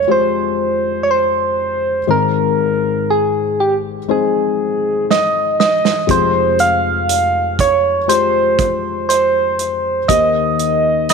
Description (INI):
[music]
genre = pop ballad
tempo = 60 BPM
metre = 4/4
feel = straight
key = F minor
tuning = A4 = 442 Hz
[part]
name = soft struck synth lead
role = melody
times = 0.0-11.1 s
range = G4 to F5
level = -14 LUFS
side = right 2 dB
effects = chorus
[part]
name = felt-muted upright piano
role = accompaniment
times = 0.0-11.1 s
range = F1 to C5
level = -20 LUFS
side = left 10 dB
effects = none
[part]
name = natural country drum kit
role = drums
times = 5.1-11.1 s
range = hi-hat, kick drum, rim click, snare drum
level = -18 LUFS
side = right 8 dB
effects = none
[sound]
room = light reverb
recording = 1960s-style stereo with parts hard left and right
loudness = -13 LUFS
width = side -5 dB against mid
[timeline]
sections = 0.0-11.1 A section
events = drum fill 5.1-6.1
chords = 0.0 Fmadd9; 2.1 Ab; 6.1 Fmadd9; 10.1 Eb6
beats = 0.09 1.09 | 2.09 3.09 4.09 5.09 | 6.09 7.09 8.09 9.09 | 10.09 11.09